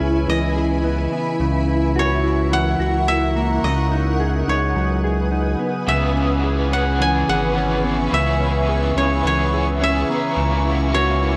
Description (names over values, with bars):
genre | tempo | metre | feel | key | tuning
dream pop | 107 BPM | 4/4 | straight | C# dorian | A4 = 440 Hz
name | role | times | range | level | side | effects
koto | melody | 0.0-11.4 s | C#5 to G#5 | -26 LUFS | equal | delay
granular cloud pad | sustained chords | 0.0-11.4 s | E4 to D#6 | -27 LUFS | equal | built-in reverb
mellow electric guitar | arpeggios | 0.0-11.4 s | C#3 to G#4 | -24 LUFS | equal | analog chorus, delay
saturated sub bass | bass | 0.0-11.4 s | G#1 to C#2 | -24 LUFS | equal | tube saturation
vibraphone with medium mallets | texture | 0.0-3.9, 7.3-10.6 s | E4 to B5 | -33 LUFS | equal | none
biting overdriven guitar | accompaniment | 5.9-11.4 s | C#3 to G#4 | -29 LUFS | equal | tremolo, lush chorus
room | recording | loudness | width
moderate lush hall reverb, RT60 2.3 s | worn, warbling old tape, cassette tape, warbly pitch drift | -19 LUFS | mono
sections
0.0-11.4 A section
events
none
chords
0.0 C#m7; 1.4 F#7/C#; 3.6 G#m7/C#; 5.9 C#m7; 10.4 F#7/C#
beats
0.27 0.83 | 1.40 1.96 2.52 3.08 | 3.64 4.20 4.76 5.32 | 5.88 6.44 7.00 7.56 | 8.12 8.68 9.24 9.81 | 10.37 10.93